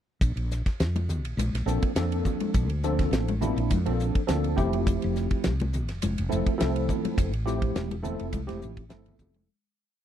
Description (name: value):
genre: electric jazz fusion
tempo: 103 BPM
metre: 4/4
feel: swing 53% on 16ths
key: Bb lydian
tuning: A4 = 440 Hz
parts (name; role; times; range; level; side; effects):
- woody fretless electric bass; bass; 0.2-9.5 s; E1 to F2; -28 LUFS; equal; lush chorus
- damped 70s drum kit; drums; 0.2-9.5 s; hi-hat, kick drum, ride cymbal, snare drum; -28 LUFS; equal; none
- congas; percussion; 1.0-9.5 s; none; -34 LUFS; left 4 dB; none
- tine electric piano; accompaniment; 1.7-9.5 s; F3 to A4; -29 LUFS; right 1 dB; medium stereo tremolo, ensemble chorus
room: little or no reverb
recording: dry, close 1970s-style studio recording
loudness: -24 LUFS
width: side -10 dB against mid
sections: 0.2-9.5 groove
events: fade-out 7.2-9.5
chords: 0.2 Bbmaj9; 4.6 Fmaj9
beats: | 0.21 0.79 1.38 1.96 | 2.54 3.12 3.70 4.28 | 4.86 5.44 6.02 6.60 | 7.18 7.76 8.34 8.92